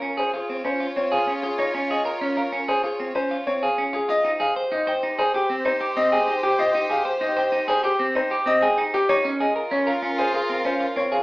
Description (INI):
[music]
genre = classical, minimalist pattern music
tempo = 96 BPM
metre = 4/4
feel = straight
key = unclear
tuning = A4 = 440 Hz
[part]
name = warm baby grand piano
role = melody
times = 0.0-11.2 s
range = G4 to G5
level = -24 LUFS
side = left 1 dB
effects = none
[part]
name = warm chamber violin section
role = sustained chords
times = 0.0-11.2 s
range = F4 to Db5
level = -30 LUFS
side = equal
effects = none
[part]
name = clean electric guitar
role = arpeggios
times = 0.0-11.2 s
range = C4 to C5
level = -23 LUFS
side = right 1 dB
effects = none
[sound]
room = moderate large studio reverb, RT60 0.9 s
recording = small speaker sound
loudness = -20 LUFS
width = side -20 dB against mid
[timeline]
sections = 0.0-11.2 A section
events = none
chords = 0.0 Db; 4.1 Abmaj7; 9.1 Db6